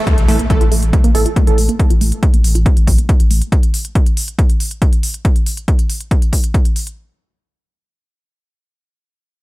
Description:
driving peak-time techno; 139 BPM; 4/4; straight; A4 = 439 Hz
tight sequenced synth; riff; 0.0-3.4 s; A3 to F4; -22 LUFS; right 2 dB; chorus, sidechain pumping, dub echo
electronic hi-hat; drums; 0.1-7.0 s; -24 LUFS; equal; overdrive, sidechain pumping on hats, sidechain pumping on cymbals, sidechain pumping on perc
electronic kick drum; drums; 0.1-6.6 s; -13 LUFS; equal
impact; sound effects; 0.1-1.8 s; -23 LUFS; left 1 dB
saturated sub bass; bass; 0.2-3.4 s; A1; -15 LUFS; equal; sidechain pumping, low-pass filter
rave stab; stabs; 0.3-1.6 s; E3 to A4; -21 LUFS; right 4 dB; chorus, built-in reverb, sidechain pumping, tape echo
little or no reverb; -12 LUFS; side -19 dB against mid
0.1-7.0 A section
impact 0.1-1.8; filter sweep on synth arpeggio sound 0.1-3.5; filter sweep on synth stab 0.1-1.8
0.1 A5

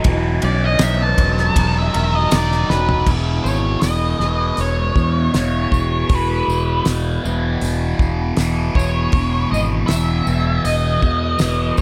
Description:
psychedelic rock; 79 BPM; 4/4; straight; A4 = 437 Hz
fuzz guitar; riff; 0.0-11.8 s; E2 to A#4; -23 LUFS; equal; distortion, phaser
damped 70s drum kit; drums; 0.0-11.8 s; crash cymbal, hi-hat, kick drum, ride cymbal, snare drum, toms; -22 LUFS; equal
fingered electric bass; bass; 0.1-11.8 s; E1 to E2; -22 LUFS; equal
octave-fuzz lead guitar; melody; 0.4-11.8 s; B4 to A5; -25 LUFS; equal; distortion, tape echo
tambourine; percussion; 0.8-11.8 s; -38 LUFS; equal
light reverb, small room reverb; -18 LUFS; mono
0.0-3.1 A section; 3.1-11.8 B section
lead electric guitar solo 0.0-3.1; drum fill 2.7-3.1
0.0 D#m7/E; 3.1 E5

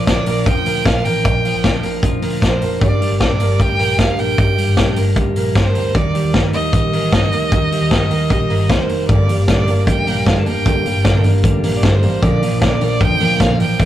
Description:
jangly indie pop; 153 BPM; 4/4; straight; G minor; A4 = 441 Hz
rich violin; melody; 0.0-13.9 s; C5 to A5; -21 LUFS; right 2 dB
twelve-string electric guitar; arpeggios; 0.0-13.9 s; G2 to Eb4; -19 LUFS; right 1 dB
vintage muted picked electric bass; bass; 0.0-13.9 s; F1 to G2; -21 LUFS; equal
vintage drum kit; drums; 0.1-13.9 s; hi-hat, kick drum, snare drum; -17 LUFS; left 1 dB
fingerpicked steel-string acoustic guitar; accompaniment; 9.1-13.9 s; G2 to D4; -19 LUFS; right 1 dB
wet booth ambience, RT60 0.2 s; rough rehearsal-room recording, warm saturation; -13 LUFS; side -12 dB against mid
0.0-13.9 A section
0.0 Bb; 2.8 Gm; 6.0 Eb; 9.1 Gm; 12.2 Bb

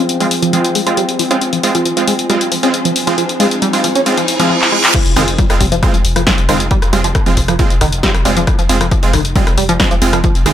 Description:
driving peak-time techno; 136 BPM; 4/4; straight; F minor; A4 = 436 Hz
tight sequenced synth; riff; 0.0-10.5 s; Eb3 to Db4; -18 LUFS; equal; chorus, tube saturation, sidechain pumping, digital delay
analog drone; drone; 0.0-4.5 s; F3 to C4; -22 LUFS; equal; chorus, sidechain pumping
riser and reverse cymbal; sound effects; 2.8-4.9 s; -21 LUFS; right 2 dB
deep dark ambient pad; texture; 0.0-4.5 s; F4 to Ab5; -24 LUFS; left 1 dB; chorus, built-in reverb, sidechain pumping
punchy analog drum machine; drums; 0.1-10.5 s; crash cymbal, handclaps, hi-hat, rim click, snare drum; -17 LUFS; left 2 dB; sidechain pumping on hats, high-pass filter on hats, high-pass filter on snare, sidechain pumping on cymbals, high-pass filter on cymbals, high-pass filter on room
supersaw stab; stabs; 0.2-10.5 s; Ab3 to F4; -18 LUFS; right 3 dB; sidechain pumping, low-pass filter, tape echo
electronic kick drum; drums; 4.9-10.3 s; -15 LUFS; equal
saturated sub bass; bass; 5.1-10.5 s; F1; -19 LUFS; left 1 dB; sidechain pumping, low-pass filter
moderate stone room reverb, RT60 1.3 s, digital ambience; -11 LUFS; side -10 dB against mid
0.0-4.9 A section; 4.9-10.5 B section
build-up 0.0-4.9; filter sweep on synth arpeggio sound 0.0-4.9; filter sweep on supersaw synth 0.0-4.9; riser 2.8-4.9; reverse cymbal 4.1-4.9; drum fill 4.6-4.9; drop 4.9-10.5
0.0 Fm

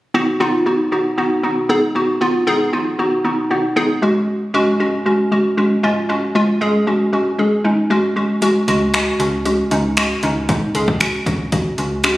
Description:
dance-pop; 116 BPM; 4/4; straight; A4 = 443 Hz
hollow square pluck; accompaniment; 0.1-12.2 s; Ab3 to Ab4; -15 LUFS; equal; chorus, sidechain pumping
punchy analog drum machine; drums; 8.4-12.2 s; finger snaps, hi-hat, kick drum; -19 LUFS; equal
slap-like FM bass; bass; 8.7-12.2 s; Db2; -25 LUFS; equal; sidechain pumping
wet lush hall reverb, RT60 1.6 s; recorded on a phone in the room, studio reverb, compression; -15 LUFS; side -17 dB against mid
0.1-12.2 A section
0.1 B; 4.0 Gbsus2; 8.4 Dbsus4

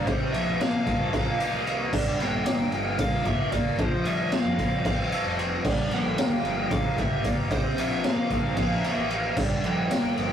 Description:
psychedelic rock; 226 BPM (eighths); 7/8; straight; G dorian; A4 = 440 Hz
fuzz lead guitar; melody; 0.0-10.3 s; C5 to G5; -32 LUFS; right 2 dB; distortion
overdriven semi-hollow guitar; riff; 0.0-10.3 s; G2 to A4; -29 LUFS; equal; phaser
fuzz picked electric bass; bass; 0.0-10.3 s; F1 to C3; -34 LUFS; equal; overdrive
raw garage drum kit; drums; 0.1-10.3 s; crash cymbal, kick drum, ride cymbal, snare drum; -26 LUFS; equal
pedal harmonium; sustained chords; 5.6-10.3 s; Bb3 to F5; -38 LUFS; right 6 dB
moderate booth ambience, RT60 0.2 s; rough rehearsal-room recording, warm saturation; -23 LUFS; side -9 dB against mid
0.0-10.3 A section
0.1 C7sus4; 1.9 Gm7; 3.8 Fadd9; 5.7 Gm7; 7.5 C7sus4; 9.4 Gm7

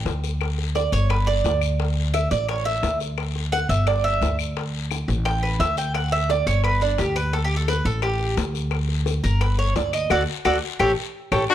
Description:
latin, Cuban son and guajira; 173 BPM; 4/4; straight; D major; A4 = 440 Hz
upright bass; bass; 0.0-11.4 s; G1 to D2; -23 LUFS; equal
bongos; percussion; 0.1-11.5 s; -32 LUFS; left 8 dB
guiro; percussion; 0.1-11.5 s; -35 LUFS; left 9 dB
claves; percussion; 0.4-11.5 s; -32 LUFS; left 13 dB
Cuban tres; arpeggios; 0.8-11.4 s; D4 to G5; -23 LUFS; right 2 dB
warm violin; melody; 11.5 s; F#4; -14 LUFS; left 4 dB
growling trumpet; second line; 11.5 s; D4; -23 LUFS; left 10 dB
light reverb; -20 LUFS; side -11 dB against mid
0.0-11.5 A section
Cuban tres solo 0.0-11.5; drum fill 10.1-11.5; band accent 10.1-11.5
0.4 G5; 1.8 D5; 3.2 G5; 4.6 D5; 6.0 G5; 7.3 D5; 8.7 G5; 10.1 D; 10.8 A7

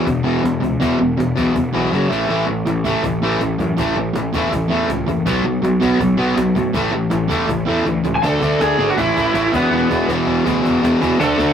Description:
punk rock; 162 BPM; 4/4; straight; E mixolydian from 8.2 s; A4 = 443 Hz
distorted electric guitar; riff; 0.0-11.5 s; E2 to D4; -20 LUFS; left 4 dB; distortion
overdriven semi-hollow guitar; riff; 0.0-11.5 s; E2 to D4; -19 LUFS; right 3 dB
fuzz picked electric bass; bass; 0.1-11.5 s; E1 to A2; -25 LUFS; equal; overdrive
cajon; drums; 0.1-11.5 s; -30 LUFS; right 1 dB
lead guitar through a small cranked amp; melody; 8.2-11.5 s; B3 to A5; -18 LUFS; equal; overdrive
distorted electric guitar; riff; 11.2-11.5 s; D3 to D4; -19 LUFS; equal; distortion
light reverb; rough rehearsal-room recording, tube saturation; -15 LUFS; side -8 dB against mid
0.0-8.2 A section; 8.2-11.5 B section
drum fill 1.9-2.3, 7.9-8.2
0.0 E5; 1.9 F#5; 2.1 A5; 5.3 B5; 6.8 A5; 8.2 D; 9.0 A5; 9.5 E5

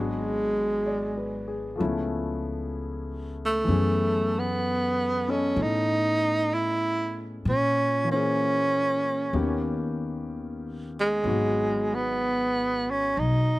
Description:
jazz ballad; 64 BPM; 4/4; swing 69% on 8ths; A4 = 440 Hz
breathy tenor saxophone; melody; 0.0-13.6 s; G#3 to E4; -25 LUFS; right 1 dB
warm concert grand piano; accompaniment; 0.0-13.6 s; D#3 to D#5; -31 LUFS; left 3 dB
upright bass; bass; 0.0-13.6 s; G#1 to A#2; -31 LUFS; left 1 dB
little or no reverb; recorded outdoors, with no room sound; -24 LUFS; side -18 dB against mid
0.0-13.6 A section
0.0 G#m7b5; 1.8 C#7alt; 3.7 F#m11; 7.4 A#m7b5; 9.3 D#7b13; 11.2 G#m7

